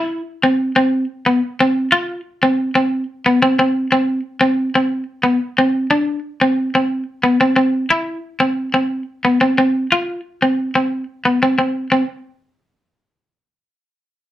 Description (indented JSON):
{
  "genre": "highlife",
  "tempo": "120 BPM (dotted quarters)",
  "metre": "12/8",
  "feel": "straight",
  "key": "unclear",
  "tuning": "A4 = 440 Hz",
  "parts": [
    { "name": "clean electric guitar", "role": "solo", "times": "0.0-12.0 s", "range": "B3 to F4", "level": "-14 LUFS", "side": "equal", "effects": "none" }
  ],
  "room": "moderate studio reverb, RT60 0.6 s",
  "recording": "band playing live in one room",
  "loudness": "-15 LUFS",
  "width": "side -13 dB against mid",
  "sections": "0.0-3.9 A section; 3.9-11.9 B section; 11.9-14.3 C section",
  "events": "none",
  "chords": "none"
}